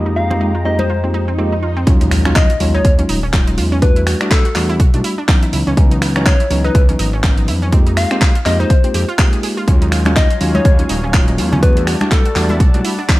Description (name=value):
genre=deep house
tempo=123 BPM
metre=4/4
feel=swing 57% on 16ths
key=unclear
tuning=A4 = 441 Hz
part: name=warm analog pad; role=sustained chords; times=0.0-1.9, 9.7-13.2 s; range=Gb3 to Bb5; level=-27 LUFS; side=left 1 dB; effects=chorus, vintage 12-bit sampler grit, sidechain pumping
part: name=tine electric piano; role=stabs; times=0.0-13.2 s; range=E3 to G4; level=-20 LUFS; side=equal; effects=vintage 12-bit sampler grit, sidechain pumping
part: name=smooth synth bass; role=bass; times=0.0-12.8 s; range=Eb1 to F2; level=-18 LUFS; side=equal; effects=sidechain pumping
part: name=analog pluck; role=arpeggios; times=0.1-13.2 s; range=C4 to Ab4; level=-25 LUFS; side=right 3 dB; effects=chorus, sidechain pumping, tape echo
part: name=soft struck synth lead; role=melody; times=0.2-12.5 s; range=A4 to F5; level=-22 LUFS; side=left 2 dB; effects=chorus, dub echo
part: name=congas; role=percussion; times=0.3-0.9, 10.1-12.6 s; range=none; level=-24 LUFS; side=left 1 dB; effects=none
part: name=swell and impact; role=sound effects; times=1.1-3.8 s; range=none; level=-24 LUFS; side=equal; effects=none
part: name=electronic kick drum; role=drums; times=1.9-13.2 s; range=none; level=-12 LUFS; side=equal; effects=none
part: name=house drum kit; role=drums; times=1.9-13.2 s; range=finger snaps, handclaps, hi-hat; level=-21 LUFS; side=equal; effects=none
room=little or no reverb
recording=vinyl crackle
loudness=-12 LUFS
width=side -18 dB against mid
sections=0.0-1.9 A section; 1.9-13.2 B section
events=swell 1.1-1.9; drop 1.9-13.2; impact 1.9-3.8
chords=0.0 Fm11; 1.9 Ebm11; 3.8 Em11; 5.5 Dbm11; 7.7 Fm11; 9.7 Ebm11; 11.6 Em11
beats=0.41 0.90 1.38 | 1.87 2.36 2.85 3.33 | 3.82 4.31 4.80 5.29 | 5.77 6.26 6.75 7.24 | 7.72 8.21 8.70 9.19 | 9.68 10.16 10.65 11.14 | 11.63 12.12 12.60 13.09